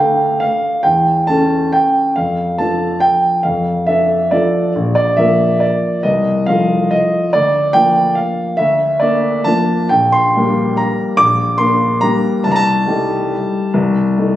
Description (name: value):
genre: classical, piano waltz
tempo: 127-152 BPM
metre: 3/4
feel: rubato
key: G minor from 9.9 s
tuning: A4 = 439 Hz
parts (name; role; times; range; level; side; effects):
- warm concert grand piano; solo; 0.0-14.4 s; Bb1 to D6; -12 LUFS; equal; none
room: moderate scoring stage reverb, RT60 1.7 s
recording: recorded on a phone in the room, club reverb, compression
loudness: -12 LUFS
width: side -13 dB against mid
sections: 0.0-14.4 A section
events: none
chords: 0.0 Dm; 0.8 A7/E; 2.2 Dm/F; 4.8 Bb; 6.0 F7/C; 7.3 Bb/D; 9.9 Gm/Bb; 12.5 Am7b5/C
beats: 0.41 | 0.85 1.28 1.74 | 2.18 2.60 3.03 | 3.45 3.88 4.33 | 4.76 5.18 5.62 | 6.04 6.47 6.92 | 7.33 7.73 8.15 | 8.58 9.01 9.46 | 9.91 10.36 10.78 | 11.19 11.60 12.03 | 12.46 12.88 13.31 | 13.74 14.17